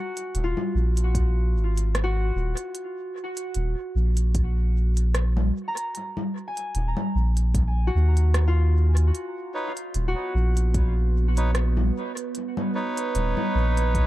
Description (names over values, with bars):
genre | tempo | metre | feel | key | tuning
ambient dub | 75 BPM | 4/4 | swing 56% on 16ths | Eb minor | A4 = 439 Hz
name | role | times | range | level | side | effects
concert harp | arpeggios | 0.0-14.0 s | F4 to Bb5 | -32 LUFS | left 1 dB | tape echo
organic electronic drum kit | drums | 0.2-14.1 s | congas, hi-hat, rim click | -31 LUFS | left 1 dB | dub echo
soft dub sub bass | bass | 0.3-14.1 s | Eb1 to Eb2 | -21 LUFS | equal | none
electronic kick drum | drums | 1.1-14.1 s | none | -27 LUFS | equal | none
melodica | stabs | 9.5-14.1 s | D#4 to C#5 | -30 LUFS | equal | dub echo
deep dark ambient pad | sustained chords | 10.3-14.1 s | B4 | -32 LUFS | right 9 dB | chorus, built-in reverb
room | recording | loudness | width
little or no reverb | echo-heavy mix | -22 LUFS | side -15 dB against mid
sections
0.0-14.1 A section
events
none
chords
0.0 Ebm; 9.1 Badd9/D#